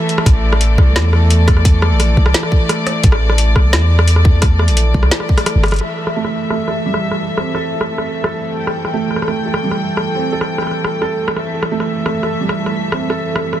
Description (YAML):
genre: half-time drum and bass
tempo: 173 BPM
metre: 4/4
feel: half-time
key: unclear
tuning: A4 = 440 Hz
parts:
  - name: dark studio string section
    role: sustained chords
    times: 0.0-13.6 s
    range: E3 to G5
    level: -20 LUFS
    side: equal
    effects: vintage 12-bit sampler grit, sidechain pumping
  - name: drum and bass drum kit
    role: drums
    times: 0.1-13.6 s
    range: hi-hat, rim click, snare drum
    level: -20 LUFS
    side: equal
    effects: soft clipping on snare, low-pass filter on snare, low-pass filter on hats, low-pass filter on room
  - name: long sustained 808-style bass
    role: bass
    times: 0.3-5.8 s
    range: G1 to E2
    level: -12 LUFS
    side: equal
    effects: tube saturation
  - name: electronic kick drum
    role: drums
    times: 0.3-5.4 s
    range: none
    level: -12 LUFS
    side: equal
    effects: none
  - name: felt-muted upright piano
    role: arpeggios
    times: 6.2-13.6 s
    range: G3 to A4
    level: -20 LUFS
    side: right 4 dB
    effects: low-pass filter, dub echo
room: light reverb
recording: dense, heavily limited modern master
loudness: -13 LUFS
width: side -12 dB against mid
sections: 0.0-5.8 A section; 5.8-13.6 B section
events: drop 0.0-5.8; drum fill 5.1-5.8; band accent 5.7; filter sweep on drum 5.8-13.6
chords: 0.0 A5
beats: | 0.27 0.61 0.96 1.30 | 1.65 2.00 2.35 2.69 | 3.04 3.39 3.73 4.08 | 4.43 4.77 5.12 5.47 | 5.81 6.16 6.51 6.85 | 7.20 7.55 7.89 8.24 | 8.59 8.94 9.28 9.63 | 9.98 10.32 10.67 11.02 | 11.36 11.71 12.06 12.40 | 12.75 13.10 13.44